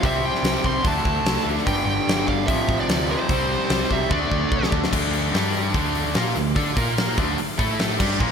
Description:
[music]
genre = hard rock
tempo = 147 BPM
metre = 4/4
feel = straight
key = D minor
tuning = A4 = 440 Hz
[part]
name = bright tonewheel organ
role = sustained chords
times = 0.0-8.3 s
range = F3 to F6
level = -35 LUFS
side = equal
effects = none
[part]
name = distorted electric guitar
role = riff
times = 0.0-8.3 s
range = F2 to D5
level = -29 LUFS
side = left 1 dB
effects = distortion
[part]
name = overdriven electric guitar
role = riff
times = 0.0-8.3 s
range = F2 to D5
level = -28 LUFS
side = right 11 dB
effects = none
[part]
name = sludgy distorted guitar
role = riff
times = 0.0-8.3 s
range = F2 to D5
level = -27 LUFS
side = left 10 dB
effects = overdrive
[part]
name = hollow-body short-scale picked electric bass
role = bass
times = 0.0-8.3 s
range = G1 to D3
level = -28 LUFS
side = equal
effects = none
[part]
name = huge arena drum kit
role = drums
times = 0.0-8.3 s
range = crash cymbal, hi-hat, kick drum, snare drum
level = -24 LUFS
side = equal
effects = gated reverb
[part]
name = high-gain lead guitar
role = melody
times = 0.1-4.7 s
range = C5 to C6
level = -27 LUFS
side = right 2 dB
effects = distortion
[sound]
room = moderate lush hall reverb, RT60 1.9 s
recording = bright 1980s-style digital production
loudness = -19 LUFS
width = side -6 dB against mid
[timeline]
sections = 0.0-4.9 A section; 4.9-8.3 B section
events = drum fill 4.1-4.9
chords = 0.0 C5; 0.8 D5; 1.7 G5; 2.5 F/A; 3.3 C5; 4.1 D5; 4.9 Dm; 5.3 G5; 5.7 Dm; 6.8 Bb5; 7.2 Dm; 7.6 A5; 8.0 Dm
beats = | 0.03 0.44 0.85 1.26 | 1.67 2.07 2.48 2.89 | 3.30 3.71 4.11 4.52 | 4.93 5.34 5.75 6.15 | 6.56 6.97 7.38 7.79 | 8.20

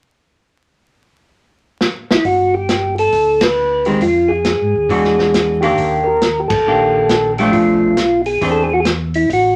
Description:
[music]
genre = soul jazz organ trio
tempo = 136 BPM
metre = 4/4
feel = swing 65% on 8ths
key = unclear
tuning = A4 = 435 Hz
[part]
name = vintage drum kit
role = drums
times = 1.8-9.4 s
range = hi-hat, kick drum, ride cymbal, snare drum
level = -22 LUFS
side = equal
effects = none
[part]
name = percussive tonewheel organ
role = melody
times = 2.1-9.6 s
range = E4 to B4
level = -17 LUFS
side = equal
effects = slow rotary speaker
[part]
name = mellow tonewheel organ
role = bass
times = 2.2-9.6 s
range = G1 to Ab2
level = -26 LUFS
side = equal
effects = slow rotary speaker
[part]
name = archtop guitar, miked and amplified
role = accompaniment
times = 3.9-8.7 s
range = Eb3 to G#4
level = -19 LUFS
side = equal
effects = none
[sound]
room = moderate studio ambience, RT60 0.5 s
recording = vinyl crackle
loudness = -15 LUFS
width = mono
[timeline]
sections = 0.5-2.3 A section; 2.3-9.6 B section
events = drum fill 1.8-2.3; band accent 3.4, 6.4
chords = 0.5 N.C.; 2.3 G; 4.0 Fm7; 4.9 E9; 5.8 Ebmaj7; 7.5 Bm7b5; 8.4 Eaug7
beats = | 0.49 0.93 1.37 1.81 | 2.25 2.69 3.13 3.58 | 4.02 4.46 4.90 5.34 | 5.78 6.22 6.66 7.10 | 7.54 7.98 8.42 8.86 | 9.30

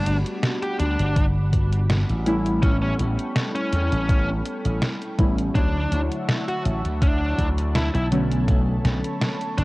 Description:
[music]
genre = vaporwave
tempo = 82 BPM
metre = 4/4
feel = swing 54% on 16ths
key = G lydian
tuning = A4 = 440 Hz
[part]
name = bluesy overdriven lead guitar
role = melody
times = 0.0-9.6 s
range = C#4 to G4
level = -29 LUFS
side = equal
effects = distortion, vintage 12-bit sampler grit, tape echo
[part]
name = warbly lo-fi synth keys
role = accompaniment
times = 0.0-9.6 s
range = D3 to C#5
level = -27 LUFS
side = equal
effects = wide subtle chorus, analog delay
[part]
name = lush unison pad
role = sustained chords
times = 0.1-9.6 s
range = G3 to D6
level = -35 LUFS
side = equal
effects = chorus, phaser
[part]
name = slap bass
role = bass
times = 0.1-9.6 s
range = F#1 to E2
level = -23 LUFS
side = equal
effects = none
[part]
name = detuned 8-bit digital drum machine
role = drums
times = 0.1-9.6 s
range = hi-hat, snare drum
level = -26 LUFS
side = equal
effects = overdrive
[part]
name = electronic kick drum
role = drums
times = 1.2-8.6 s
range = none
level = -21 LUFS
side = equal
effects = overdrive
[sound]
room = little or no reverb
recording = worn, warbling old tape, cassette tape, warbly pitch drift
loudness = -20 LUFS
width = side -21 dB against mid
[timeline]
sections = 0.0-9.6 A section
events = none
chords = 0.0 Gmaj7; 2.3 A9; 5.6 Dmaj9; 8.1 Bm9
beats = 0.43 1.17 1.90 | 2.63 3.36 4.09 4.82 | 5.56 6.29 7.02 7.75 | 8.48 9.21

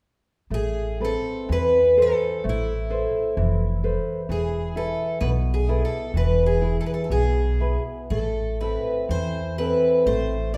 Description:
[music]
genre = fado-style ballad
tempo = 60-65 BPM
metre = 2/4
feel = rubato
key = A harmonic minor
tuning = A4 = 440 Hz
[part]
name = picked twelve-string acoustic guitar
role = melody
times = 0.5-10.6 s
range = E4 to D5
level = -26 LUFS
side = equal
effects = none
[part]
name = nylon-string guitar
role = accompaniment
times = 0.5-10.6 s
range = B2 to C5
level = -29 LUFS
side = equal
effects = none
[part]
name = upright bass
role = bass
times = 0.5-10.6 s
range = E1 to E2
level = -28 LUFS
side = equal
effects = none
[sound]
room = moderate recital hall reverb, RT60 1.4 s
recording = none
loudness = -23 LUFS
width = mono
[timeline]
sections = 0.5-10.6 A section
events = none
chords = 0.5 Amadd9; 4.3 Esus4; 6.1 E; 8.1 Am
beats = | 0.52 1.49 | 2.44 3.37 | 4.29 5.21 | 6.14 7.11 | 8.11 9.10 | 10.06

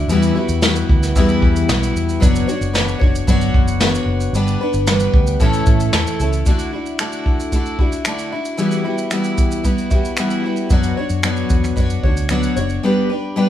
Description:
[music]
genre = acoustic pop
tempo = 113 BPM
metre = 4/4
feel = straight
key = D major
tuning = A4 = 439 Hz
[part]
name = picked twelve-string acoustic guitar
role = accompaniment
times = 0.0-13.5 s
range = E2 to C#5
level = -18 LUFS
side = left 1 dB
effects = none
[part]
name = vintage muted fingered electric bass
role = bass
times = 0.0-6.4, 10.7-12.8 s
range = F#1 to A2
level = -20 LUFS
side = equal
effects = none
[part]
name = vintage brush drum kit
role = drums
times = 0.1-12.8 s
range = finger snaps, kick drum, shaker, snare drum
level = -17 LUFS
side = equal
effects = none
[sound]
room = light reverb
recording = band playing live in one room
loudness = -15 LUFS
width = side -11 dB against mid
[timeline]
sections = 0.0-6.5 A section; 6.5-13.5 B section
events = none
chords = 0.1 Emadd9; 2.2 Bmadd9/F#; 4.3 G; 5.4 A; 6.5 Dadd9; 8.6 Emadd9; 10.7 Bmadd9; 12.8 G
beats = | 0.11 0.64 1.17 1.70 | 2.22 2.75 3.28 3.81 | 4.34 4.87 5.40 5.93 | 6.46 6.99 7.53 8.06 | 8.59 9.12 9.65 10.18 | 10.71 11.24 11.77 12.30 | 12.83 13.36

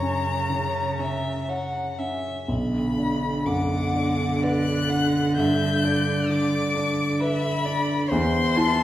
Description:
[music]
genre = classical, slow romantic movement for piano quartet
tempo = 59-67 BPM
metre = 3/4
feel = rubato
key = unclear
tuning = A4 = 437 Hz
[part]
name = rich violin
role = melody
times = 0.0-8.8 s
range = A#5 to G6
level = -28 LUFS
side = left 4 dB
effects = none
[part]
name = clear cello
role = second line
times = 0.0-8.8 s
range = C#3 to E3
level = -27 LUFS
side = right 2 dB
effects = none
[part]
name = rich violin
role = second line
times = 0.0-8.8 s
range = C5 to A5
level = -30 LUFS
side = left 2 dB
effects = none
[part]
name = dark concert grand piano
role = accompaniment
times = 0.0-8.8 s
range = B1 to C#5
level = -25 LUFS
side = equal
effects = none
[sound]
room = wet recital hall reverb, RT60 1.6 s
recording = heard from further back in the room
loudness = -21 LUFS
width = side -13 dB against mid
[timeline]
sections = 0.0-8.8 A section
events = none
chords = 0.0 F#; 2.5 Bm; 5.4 G; 8.1 N.C.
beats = 0.51 1.49 | 2.49 3.47 4.43 | 5.37 6.30 7.21 | 8.11

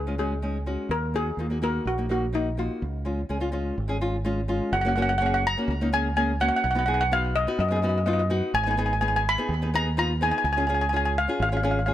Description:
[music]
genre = calypso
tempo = 126 BPM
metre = 4/4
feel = straight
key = F# major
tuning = A4 = 445 Hz
[part]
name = steel pan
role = melody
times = 0.0-11.9 s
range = D#4 to B5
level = -25 LUFS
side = left 1 dB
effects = digital delay
[part]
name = fingered electric bass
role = bass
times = 0.0-11.9 s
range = F#1 to F#2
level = -27 LUFS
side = right 1 dB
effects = none
[part]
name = nylon-string guitar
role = accompaniment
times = 0.1-11.9 s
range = G#3 to G#4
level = -29 LUFS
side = left 1 dB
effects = none
[sound]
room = light reverb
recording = none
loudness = -23 LUFS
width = side -12 dB against mid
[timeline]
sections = 0.0-4.7 A section; 4.7-11.9 B section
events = none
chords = 0.0 F#sus2; 0.9 D#m; 2.8 C#; 4.7 F#add9; 6.6 B; 8.5 G#m; 10.4 C#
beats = 0.42 | 0.90 1.38 1.86 2.34 | 2.82 3.30 3.78 4.25 | 4.73 5.21 5.69 6.16 | 6.64 7.12 7.59 8.07 | 8.54 9.02 9.50 9.97 | 10.45 10.93 11.40 11.88

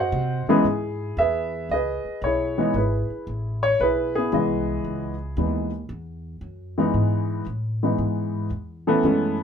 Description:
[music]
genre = jazz piano trio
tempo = 114 BPM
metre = 4/4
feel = swing 68% on 8ths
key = C# minor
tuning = A4 = 440 Hz
[part]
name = warm baby grand piano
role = melody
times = 0.0-9.4 s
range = C#2 to F#5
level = -22 LUFS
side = equal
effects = none
[part]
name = upright bass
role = bass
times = 0.0-9.4 s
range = G#1 to B#2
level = -28 LUFS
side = equal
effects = none
[sound]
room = moderate small room ambience, RT60 0.5 s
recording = minimal, uncompressed stereo recording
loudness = -21 LUFS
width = side -7 dB against mid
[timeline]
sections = 0.7-9.4 A section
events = none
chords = 0.0 G#7#9; 0.7 C#m7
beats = 0.13 | 0.65 1.18 1.70 2.23 | 2.75 3.28 3.80 4.32 | 4.85 5.37 5.89 6.42 | 6.94 7.47 7.99 8.51 | 9.04

